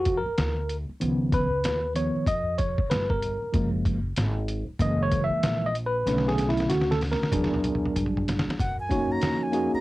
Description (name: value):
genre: hip hop, jazz-hop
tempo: 95 BPM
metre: 4/4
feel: swing 61% on 16ths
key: F# major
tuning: A4 = 440 Hz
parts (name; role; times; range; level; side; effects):
- tine electric piano; accompaniment; 0.0-9.8 s; D3 to E5; -26 LUFS; equal; fast stereo tremolo
- upright bass; bass; 0.0-9.8 s; F#1 to G2; -30 LUFS; equal; none
- trip hop sampler-style drum kit; drums; 0.1-9.7 s; hi-hat, kick drum, snare drum, toms; -28 LUFS; equal; cassette tape
- breathy bright concert flute; melody; 8.6-9.8 s; F#5 to A#5; -30 LUFS; right 1 dB; cassette tape
room: moderate booth ambience, RT60 0.2 s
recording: home recording on cassette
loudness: -23 LUFS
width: side -18 dB against mid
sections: 0.0-8.6 A section; 8.6-9.8 B section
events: tine electric piano solo 0.0-8.6; drum fill 6.1-8.6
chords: 0.0 A#5; 1.0 C#7; 3.5 F#maj9; 4.8 F#7; 6.1 Bm7; 7.3 E9; 8.6 F#6